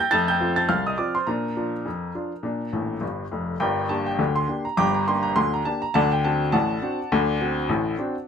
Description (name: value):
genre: ragtime piano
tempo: 103 BPM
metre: 2/4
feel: swing 57% on 16ths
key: unclear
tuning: A4 = 441 Hz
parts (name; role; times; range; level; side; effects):
- clear upright piano; solo; 0.0-8.3 s; F1 to A6; -21 LUFS; left 1 dB; none
room: light reverb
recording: minimal, uncompressed stereo recording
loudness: -21 LUFS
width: side -7 dB against mid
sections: 0.0-3.6 A section; 3.6-8.3 B section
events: upright piano fill 2.7-3.6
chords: 0.1 F; 1.3 Bb; 3.6 Gm; 5.9 D7